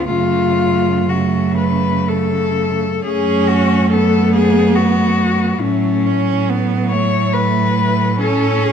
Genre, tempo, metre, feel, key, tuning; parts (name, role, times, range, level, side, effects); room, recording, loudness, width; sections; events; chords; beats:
classical, lyrical piece for cello ensemble; 57-72 BPM; 3/4; rubato; F# minor; A4 = 440 Hz
rich cello; melody; 0.0-8.7 s; C#4 to C#5; -18 LUFS; left 7 dB
rich cello; second line; 0.0-8.7 s; A3 to C#4; -20 LUFS; right 10 dB
clear cello; accompaniment; 0.0-8.7 s; C#3 to C#4; -20 LUFS; equal
clear cello; bass; 0.0-8.7 s; C#2 to A2; -19 LUFS; right 2 dB
moderate recital hall reverb, RT60 1.4 s; dark, warm production; -13 LUFS; side -8 dB against mid
0.0-3.0 A section; 3.0-8.7 B section
0.1 F#m; 5.6 F#m/A; 8.2 A
| 0.10 1.13 2.09 | 3.04 3.92 4.78 | 5.63 6.49 7.35 | 8.21